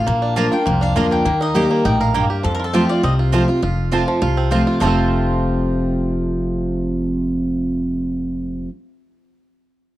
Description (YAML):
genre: bluegrass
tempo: 202 BPM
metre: 4/4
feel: straight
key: F mixolydian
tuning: A4 = 439 Hz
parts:
  - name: bluegrass banjo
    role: melody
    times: 0.0-8.7 s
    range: F3 to Bb4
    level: -24 LUFS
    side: right 5 dB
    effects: none
  - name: mandolin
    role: melody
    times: 0.0-8.6 s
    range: G4 to A5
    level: -24 LUFS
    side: left 3 dB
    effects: none
  - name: picked steel-string acoustic guitar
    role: accompaniment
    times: 0.0-8.7 s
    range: F2 to G4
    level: -19 LUFS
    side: equal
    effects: none
  - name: upright bass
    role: bass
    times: 0.0-8.6 s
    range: F1 to F2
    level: -22 LUFS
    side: equal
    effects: none
  - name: mandolin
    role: stabs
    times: 0.4-8.7 s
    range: Bb3 to Bb5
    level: -28 LUFS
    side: right 7 dB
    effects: none
room: small room ambience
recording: dry, close 1970s-style studio recording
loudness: -16 LUFS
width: side -15 dB against mid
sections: 0.0-3.6 A section; 3.6-4.8 B section; 4.8-7.2 C section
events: none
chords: 0.1 Bb; 1.3 Eb; 2.4 F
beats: | 0.07 0.37 0.66 0.96 | 1.26 1.55 1.85 2.15 | 2.44 2.74 3.04 3.33 | 3.63 3.92 4.22 4.52 | 4.82 5.11 5.41 5.71 | 6.00 6.30 6.59 6.89